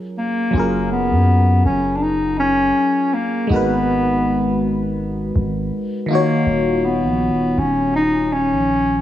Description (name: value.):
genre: contemporary R&B.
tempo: 81 BPM.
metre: 4/4.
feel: swing 54% on 16ths.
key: unclear.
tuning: A4 = 440 Hz.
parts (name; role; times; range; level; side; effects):
FM electric piano; accompaniment; 0.0-9.0 s; D#3 to C#5; -22 LUFS; left 1 dB; chorus, phaser.
mellow bass clarinet; melody; 0.2-9.0 s; A#3 to D#4; -18 LUFS; left 1 dB; tape echo.
long sustained 808-style bass; bass; 0.5-9.0 s; D#1 to F#2; -22 LUFS; equal; none.
room: moderate lush hall reverb, RT60 2.7 s.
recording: small room ambience.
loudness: -16 LUFS.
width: side -12 dB against mid.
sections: 0.5-9.0 A section.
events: break 0.0-0.5.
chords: 0.0 F#maj9; 3.5 G#m9; 6.1 D#m9.